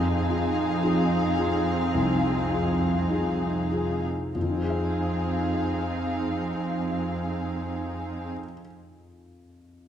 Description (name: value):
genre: cinematic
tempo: 47-57 BPM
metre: 4/4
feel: rubato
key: F minor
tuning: A4 = 440 Hz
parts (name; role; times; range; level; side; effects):
- muted studio violin section; second line; 0.0-8.3 s; Ab4 to F5; -32 LUFS; left 5 dB; none
- felt-muted upright piano; accompaniment; 0.0-9.9 s; C2 to F5; -30 LUFS; left 2 dB; none
- muted studio viola section; accompaniment; 0.0-8.3 s; C4 to Eb4; -30 LUFS; right 4 dB; none
- muted studio cello section; bass; 0.0-8.3 s; F2; -30 LUFS; right 2 dB; none
room: moderate scoring stage reverb, RT60 1.9 s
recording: dark, warm production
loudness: -24 LUFS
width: side -9 dB against mid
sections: 0.0-4.4 A section; 4.4-9.4 B section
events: slowing down 0.0-4.4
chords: 0.0 Fm7